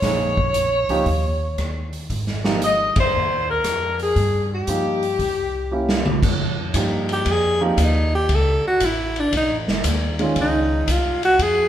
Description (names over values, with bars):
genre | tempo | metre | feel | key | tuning
jazz, big band swing | 116 BPM | 4/4 | swing 68% on 8ths | unclear | A4 = 440 Hz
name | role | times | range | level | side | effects
warm saxophone section | melody | 0.0-6.0 s | G4 to Eb5 | -21 LUFS | left 1 dB | none
warm grand piano | accompaniment | 0.0-10.8 s | D#3 to Ab4 | -24 LUFS | right 2 dB | none
upright bass | bass | 0.0-11.7 s | F#1 to G2 | -24 LUFS | equal | none
swinging big-band drum kit | drums | 0.0-11.6 s | crash cymbal, hi-hat, kick drum, ride cymbal, rim click, snare drum, toms | -24 LUFS | equal | none
clear alto saxophone | melody | 7.1-11.7 s | C4 to A4 | -19 LUFS | equal | none
room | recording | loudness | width
wet large studio reverb, RT60 1.3 s | band playing live in one room | -18 LUFS | side -11 dB against mid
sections
0.0-6.2 A section; 6.2-11.7 B section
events
band accent 2.9; drum fill 5.7-6.2; alto saxophone solo 6.2-11.7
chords
0.0 Bbm7; 1.1 Dbsus2/Eb; 2.1 Ab69; 4.2 Gm7; 5.2 C7b9; 6.2 Ebadd9; 8.3 A; 9.3 B9; 10.4 Dbmaj9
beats
| 0.03 0.55 1.06 1.58 | 2.10 2.61 3.13 3.65 | 4.16 4.68 5.20 5.71 | 6.23 6.75 7.26 7.78 | 8.29 8.81 9.32 9.84 | 10.36 10.87 11.38